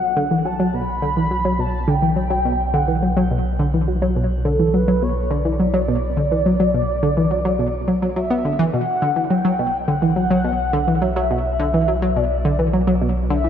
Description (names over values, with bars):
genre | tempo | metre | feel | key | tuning
ambient, sequencer-driven space music | 105 BPM | 4/4 | straight | B minor | A4 = 438 Hz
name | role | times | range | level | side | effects
mellow horn-like synth lead | melody | 0.0-13.5 s | A4 to B5 | -23 LUFS | equal | phaser, analog chorus, shimmer reverb, tape echo
warm sub bass | bass | 0.0-13.5 s | B1 | -24 LUFS | equal | none
analog pluck | riff | 0.2-13.5 s | B2 to B3 | -19 LUFS | equal | chorus, tape echo
room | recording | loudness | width
moderate plate reverb, RT60 3.0 s | none | -17 LUFS | side -9 dB against mid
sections
0.0-8.7 A section; 8.7-13.5 B section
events
filter sweep on synth arpeggio sound 0.0-8.7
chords
0.0 Bm